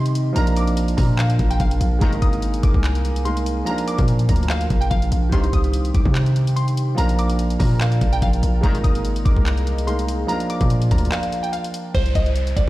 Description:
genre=hip hop, trap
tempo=145 BPM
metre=4/4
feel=half-time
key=unclear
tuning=A4 = 442 Hz
part: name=glassy wavetable pluck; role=melody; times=0.0-12.7 s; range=C5 to Eb6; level=-29 LUFS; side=equal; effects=chorus, low-pass filter, digital delay
part: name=clear baby grand piano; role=accompaniment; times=0.0-12.0 s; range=Eb3 to Bb4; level=-26 LUFS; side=right 2 dB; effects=low-pass filter
part: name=warbly tape-like pad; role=sustained chords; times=0.0-11.9 s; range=C4 to Bb5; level=-31 LUFS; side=right 1 dB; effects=chorus, built-in reverb
part: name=hard-hitting 808-style bass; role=bass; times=0.0-12.7 s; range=Ab1 to C3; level=-20 LUFS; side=equal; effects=none
part: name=trap drum kit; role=drums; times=0.1-12.7 s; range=handclaps, hi-hat, kick drum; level=-21 LUFS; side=equal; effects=none
part: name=bright brass ensemble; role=stabs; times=2.0-2.1, 5.3-5.5, 8.6-8.8 s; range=Bb1 to Eb3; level=-33 LUFS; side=left 4 dB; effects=none
part: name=downlifter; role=sound effects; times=11.9-12.7 s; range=none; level=-35 LUFS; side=equal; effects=none
room=little or no reverb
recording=played on a big sound system in a bare room, stone room reverb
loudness=-17 LUFS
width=side -17 dB against mid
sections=0.0-11.9 A section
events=break 11.1-11.9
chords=0.4 Bb; 2.0 Absus2; 3.7 Bb; 5.3 Cm; 7.0 Bb; 8.6 Absus2; 10.3 Bb; 11.9 Cm

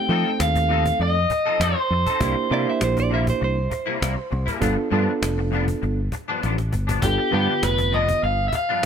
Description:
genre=straight-eighth soul blues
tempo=100 BPM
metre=4/4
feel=swing 54% on 16ths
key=unclear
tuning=A4 = 439 Hz
part: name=overdriven electric guitar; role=melody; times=0.0-3.4, 7.0-8.9 s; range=G4 to G5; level=-22 LUFS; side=equal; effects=slapback echo
part: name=overdriven reed electric piano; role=accompaniment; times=0.0-8.4 s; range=D3 to B4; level=-26 LUFS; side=right 5 dB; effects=none
part: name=electric guitar at the edge of break-up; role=stabs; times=0.1-8.9 s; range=G2 to A4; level=-28 LUFS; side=left 5 dB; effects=ensemble chorus
part: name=fingered electric bass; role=bass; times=0.1-8.5 s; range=F1 to F3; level=-23 LUFS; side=equal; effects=none
part: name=cajon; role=drums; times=0.1-8.9 s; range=none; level=-29 LUFS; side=equal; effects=none
part: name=direct-recorded clean electric guitar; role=second line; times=2.5-4.6 s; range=C5 to E5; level=-28 LUFS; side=right 5 dB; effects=none
room=little or no reverb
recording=none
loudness=-19 LUFS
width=side -7 dB against mid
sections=0.0-8.9 A section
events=drum fill 6.4-7.0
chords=0.0 F7; 2.2 C7; 4.6 G7

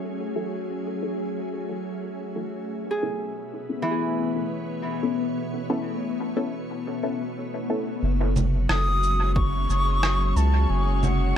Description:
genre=ambient dub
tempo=90 BPM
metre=4/4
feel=swing 59% on 16ths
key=F# minor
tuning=A4 = 440 Hz
part: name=soft additive organ-like pad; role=sustained chords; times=0.0-11.4 s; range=B2 to E5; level=-29 LUFS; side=left 2 dB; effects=ensemble chorus, built-in reverb
part: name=filtered dub chord stab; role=stabs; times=0.4-7.9 s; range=B3 to A4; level=-32 LUFS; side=left 2 dB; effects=phaser, vintage 12-bit sampler grit, dub echo
part: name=Celtic harp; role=arpeggios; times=2.9-7.7 s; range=E3 to G#4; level=-31 LUFS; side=right 2 dB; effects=tape echo
part: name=round analog bass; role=bass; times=8.0-11.3 s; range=F#1 to C#2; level=-22 LUFS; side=equal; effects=none
part: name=electronic congas, cabasa and rim click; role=drums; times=8.4-11.2 s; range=none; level=-27 LUFS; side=right 2 dB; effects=overdrive, dub echo
part: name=wooden flute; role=melody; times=8.7-11.4 s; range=F#5 to D#6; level=-26 LUFS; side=left 2 dB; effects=tape echo
part: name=electronic kick drum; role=drums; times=9.4-9.5 s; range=none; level=-26 LUFS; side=equal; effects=overdrive
room=light reverb, digital ambience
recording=echo-heavy mix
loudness=-23 LUFS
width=side -9 dB against mid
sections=0.0-8.0 A section; 8.0-11.4 B section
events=filter sweep on ambient pad 0.0-8.0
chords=0.0 F#m7; 2.7 B9sus4; 8.0 F#5

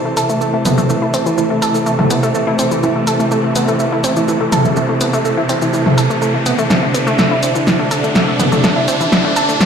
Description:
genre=melodic techno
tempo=124 BPM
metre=4/4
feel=straight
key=A minor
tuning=A4 = 440 Hz
part: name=warm studio string section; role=sustained chords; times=0.0-9.7 s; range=C3 to D4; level=-18 LUFS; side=equal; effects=low-pass filter
part: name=tight sequencer bass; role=bass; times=0.0-9.7 s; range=none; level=barely audible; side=none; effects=none
part: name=riser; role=sound effects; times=1.5-9.7 s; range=none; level=-24 LUFS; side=equal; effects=none
part: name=airy breathy pad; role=texture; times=0.0-9.7 s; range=E4 to A5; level=-23 LUFS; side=right 2 dB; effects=chorus
part: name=analog pluck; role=arpeggios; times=0.1-9.7 s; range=E3 to A4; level=-18 LUFS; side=right 1 dB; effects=chorus, digital delay
part: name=punchy analog drum machine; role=drums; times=0.2-9.7 s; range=hi-hat, shaker, snare drum, toms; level=-17 LUFS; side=equal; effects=none
room=moderate digital room reverb, RT60 1.1 s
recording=played on a big sound system in a bare room, stone room reverb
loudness=-12 LUFS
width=side -7 dB against mid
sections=0.0-9.7 A section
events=build-up 0.0-9.7; filter sweep on string section 0.0-9.7; riser 1.5-9.7; drum fill 6.7-9.7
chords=0.0 Am

